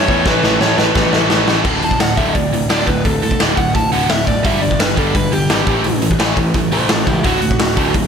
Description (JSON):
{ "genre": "punk rock", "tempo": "172 BPM", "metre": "4/4", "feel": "straight", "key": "unclear", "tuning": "A4 = 441 Hz", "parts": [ { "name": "overdriven semi-hollow guitar", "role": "melody", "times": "0.0-7.9 s", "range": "E4 to A5", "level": "-20 LUFS", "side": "right 1 dB", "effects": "slapback echo, ping-pong delay" }, { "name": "distorted electric guitar", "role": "riff", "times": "0.0-8.1 s", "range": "D2 to A3", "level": "-21 LUFS", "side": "left 10 dB", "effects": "overdrive, slapback echo" }, { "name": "distorted electric guitar", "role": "riff", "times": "0.0-1.7 s", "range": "A2 to A4", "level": "-23 LUFS", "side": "equal", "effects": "none" }, { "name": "tight distorted guitar", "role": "riff", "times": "0.0-8.1 s", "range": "D2 to A3", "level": "-20 LUFS", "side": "right 10 dB", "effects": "distortion, slapback echo" }, { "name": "overdriven picked electric bass", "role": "bass", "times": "0.0-8.1 s", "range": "D1 to E2", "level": "-21 LUFS", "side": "equal", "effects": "none" }, { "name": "raw garage drum kit", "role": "drums", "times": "0.1-8.0 s", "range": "crash cymbal, hi-hat, kick drum, snare drum", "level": "-17 LUFS", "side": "equal", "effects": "none" } ], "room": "moderate lush hall reverb, RT60 1.7 s, studio ambience", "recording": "big arena sound", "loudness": "-12 LUFS", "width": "side -7 dB against mid", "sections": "0.0-1.7 A section; 1.7-8.1 B section", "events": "drum fill 0.3-1.7; overdriven electric guitar solo 1.7-8.1", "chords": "0.0 A; 1.7 D5; 4.5 G5; 5.7 A5; 7.2 D" }